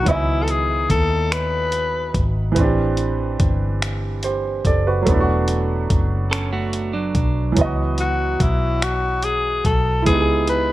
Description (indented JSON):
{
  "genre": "slow six-eight R&B",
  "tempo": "48 BPM (dotted quarters)",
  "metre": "6/8",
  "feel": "straight",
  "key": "C# minor",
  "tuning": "A4 = 443 Hz",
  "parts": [
    { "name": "growling tenor saxophone", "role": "melody", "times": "0.0-2.3, 8.0-10.7 s", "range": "E4 to B4", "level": "-21 LUFS", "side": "left 3 dB", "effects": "slapback echo" },
    { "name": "clear baby grand piano", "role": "accompaniment", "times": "0.0-10.7 s", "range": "D#3 to G#5", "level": "-23 LUFS", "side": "right 4 dB", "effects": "none" },
    { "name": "vintage muted fingered electric bass", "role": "bass", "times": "0.0-10.7 s", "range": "E1 to D#2", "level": "-22 LUFS", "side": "equal", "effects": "none" },
    { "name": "dusty soul sampler-style drum kit", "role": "drums", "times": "0.1-10.7 s", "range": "finger snaps, hi-hat, kick drum", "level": "-22 LUFS", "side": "equal", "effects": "none" },
    { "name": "clean electric guitar", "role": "second line", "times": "6.3-7.5 s", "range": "F#3 to A4", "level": "-26 LUFS", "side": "right 4 dB", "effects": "none" }
  ],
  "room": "little or no reverb",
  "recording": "none",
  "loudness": "-17 LUFS",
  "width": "side -15 dB against mid",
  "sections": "0.0-10.7 A section",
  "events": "none",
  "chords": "0.0 C#m11; 2.6 Am11; 5.1 E9sus4; 7.6 C#m11"
}